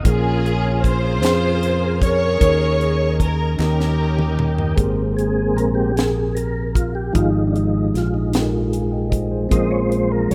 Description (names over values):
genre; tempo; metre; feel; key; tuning
slow gospel; 51 BPM (dotted quarters); 6/8; straight; Ab major; A4 = 440 Hz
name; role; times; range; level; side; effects
warm studio string section; melody; 0.0-4.7 s; Db4 to Db5; -23 LUFS; equal; none
mellow tine electric piano; accompaniment; 0.0-10.3 s; Ab2 to Ab5; -29 LUFS; equal; none
tonewheel organ; sustained chords; 0.0-10.3 s; F3 to Ab5; -26 LUFS; equal; slow rotary speaker, chorus vibrato
fingered electric bass; bass; 0.1-10.3 s; Ab1 to F2; -23 LUFS; equal; none
crisp fusion drum kit; drums; 0.1-10.3 s; hi-hat, kick drum, snare drum, toms; -23 LUFS; equal; none
group handclap; percussion; 1.2-4.0 s; none; -37 LUFS; equal; none
room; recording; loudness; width
light reverb, small room ambience; rough home demo mix; -19 LUFS; mono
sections
0.0-4.8 A section; 4.8-10.3 B section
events
drum fill 3.6-4.8; tonewheel organ solo 4.8-10.3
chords
0.1 Bbm7; 2.4 Eb7sus4; 3.6 Eb7; 4.8 Abmaj9; 7.2 Fm9/Ab; 9.5 Bbm9